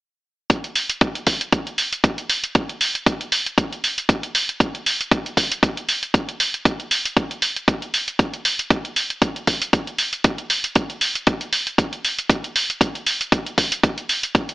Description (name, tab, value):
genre	nu-disco, nu disco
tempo	117 BPM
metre	4/4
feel	swing 55% on 16ths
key	none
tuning	none
part	electronic hi-hat	drums	0.5-14.5 s	none	-22 LUFS	right 1 dB	none
part	electronic kick drum	drums	0.5-14.5 s	none	-19 LUFS	equal	none
room	little or no reverb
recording	AM radio sound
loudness	-18 LUFS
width	side -21 dB against mid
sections	0.5-14.5 A section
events	none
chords	none